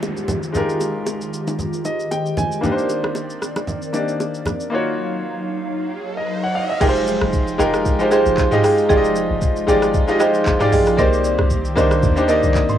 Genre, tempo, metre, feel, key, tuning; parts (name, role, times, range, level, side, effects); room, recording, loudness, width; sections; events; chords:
amapiano; 115 BPM; 4/4; swing 55% on 16ths; F dorian; A4 = 440 Hz
bright baby grand piano; accompaniment; 0.0-12.8 s; Ab3 to Eb6; -20 LUFS; left 1 dB; cassette tape
hollow soft pad; sustained chords; 0.0-12.8 s; Eb3 to G5; -26 LUFS; equal; ensemble chorus, cassette tape
smooth R&B drum kit; drums; 0.0-12.8 s; crash cymbal, handclaps, hi-hat, kick drum, rim click, shaker, toms; -22 LUFS; equal; cassette tape
bongos and congas; percussion; 0.0-4.6 s; -26 LUFS; right 1 dB
downlifter and riser; sound effects; 0.0-6.8 s; -33 LUFS; right 2 dB
buzzing marimba with medium mallets; stabs; 6.8-12.4 s; Ab4 to G5; -21 LUFS; right 4 dB; cassette tape, tape echo
deep log drum bass; bass; 6.8-12.5 s; F1 to Eb2; -23 LUFS; equal
light reverb; home recording on cassette; -16 LUFS; side -10 dB against mid
0.0-6.8 A section; 6.8-12.8 B section
grand piano fill 1.6-2.6; riser 5.5-6.8; drop 6.8-12.8
0.0 Fm9; 2.6 Cm9; 4.7 Ebm9; 6.8 Fm9; 11.0 Cm9